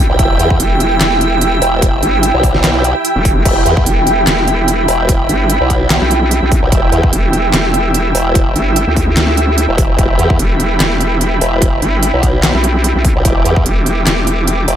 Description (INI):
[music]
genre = heavy wobble dubstep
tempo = 147 BPM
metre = 4/4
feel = swing 54% on 16ths, half-time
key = E minor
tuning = A4 = 441 Hz
[part]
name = supersaw chords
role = sustained chords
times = 0.0-14.8 s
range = E4 to E6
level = -18 LUFS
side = right 1 dB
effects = sidechain pumping, low-pass filter
[part]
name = vowel-sweep wobble bass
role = bass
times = 0.0-14.7 s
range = E1 to D2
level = -14 LUFS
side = equal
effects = chorus, overdrive
[part]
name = granular cloud pad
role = texture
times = 0.0-14.8 s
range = G5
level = -19 LUFS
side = right 2 dB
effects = built-in reverb, sidechain pumping
[part]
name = formant-sweep wobble bass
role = bass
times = 0.1-14.8 s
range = E1 to E2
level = -14 LUFS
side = equal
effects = chorus, overdrive
[part]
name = dubstep drum kit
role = drums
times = 0.2-14.8 s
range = crash cymbal, handclaps, hi-hat, snare drum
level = -17 LUFS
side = equal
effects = none
[part]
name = electronic kick drum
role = drums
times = 0.2-13.6 s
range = none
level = -14 LUFS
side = equal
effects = overdrive
[sound]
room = little or no reverb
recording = none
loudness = -10 LUFS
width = side -10 dB against mid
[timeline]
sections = 0.0-14.8 A section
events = none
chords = 0.0 Em